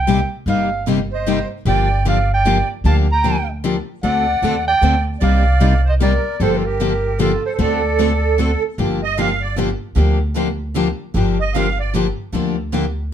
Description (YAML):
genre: acoustic string swing (jazz manouche)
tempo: 152 BPM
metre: 3/4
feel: swing 64% on 8ths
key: G minor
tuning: A4 = 440 Hz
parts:
  - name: warm clarinet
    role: melody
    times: 0.0-8.6 s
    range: A4 to Bb5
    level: -20 LUFS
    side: right 2 dB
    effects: none
  - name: upright bass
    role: bass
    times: 0.0-13.1 s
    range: G1 to Eb2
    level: -19 LUFS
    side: equal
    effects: none
  - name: picked steel-string acoustic guitar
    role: accompaniment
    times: 0.1-12.8 s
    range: C3 to A4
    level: -21 LUFS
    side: left 7 dB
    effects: none
  - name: picked steel-string acoustic guitar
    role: accompaniment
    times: 0.1-12.8 s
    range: C3 to A4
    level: -25 LUFS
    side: right 6 dB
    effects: none
  - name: musette accordion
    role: second line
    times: 1.1-11.9 s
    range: F4 to G5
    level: -23 LUFS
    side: right 8 dB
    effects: none
room: light reverb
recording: none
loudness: -15 LUFS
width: side -9 dB against mid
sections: 0.0-8.8 A section; 8.8-13.1 B section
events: accordion solo 8.8-13.1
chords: 0.0 Cm7; 1.7 Gm7; 4.0 D7; 5.2 Cm9; 6.4 Gm7; 7.6 D7; 8.8 Gm7